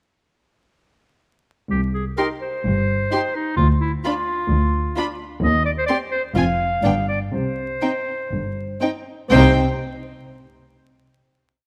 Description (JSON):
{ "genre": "cinematic, playful, whimsical film cue", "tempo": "119-131 BPM", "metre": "4/4", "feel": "straight", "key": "C minor", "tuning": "A4 = 440 Hz", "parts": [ { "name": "bright clarinet", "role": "second line", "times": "1.7-9.5 s", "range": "Eb4 to F5", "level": "-26 LUFS", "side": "equal", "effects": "none" }, { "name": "dark studio cello section", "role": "bass", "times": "1.7-9.6 s", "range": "C2 to C3", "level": "-25 LUFS", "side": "equal", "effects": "none" }, { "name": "warm chamber double bass section", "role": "bass", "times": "1.7-9.6 s", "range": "F1 to Eb2", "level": "-25 LUFS", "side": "equal", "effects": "none" }, { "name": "warm chamber violin section", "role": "melody", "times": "2.2-9.6 s", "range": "G5 to C6", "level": "-31 LUFS", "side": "equal", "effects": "none" }, { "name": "warm chamber violin section", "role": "second line", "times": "2.2-9.6 s", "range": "D4 to G4", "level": "-29 LUFS", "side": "equal", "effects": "none" }, { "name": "dark studio viola section", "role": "accompaniment", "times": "2.2-9.6 s", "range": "B3 to Eb4", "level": "-27 LUFS", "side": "equal", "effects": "none" } ], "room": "moderate scoring stage reverb, RT60 2.0 s", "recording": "vinyl crackle", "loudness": "-21 LUFS", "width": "mono", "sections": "1.7-9.3 A section; 9.3-11.3 final chord", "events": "none", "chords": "1.7 C5; 3.6 Bdim/D (rootless); 5.4 Cm/Eb; 6.4 F5; 6.8 G7; 7.3 C5; 9.3 N.C." }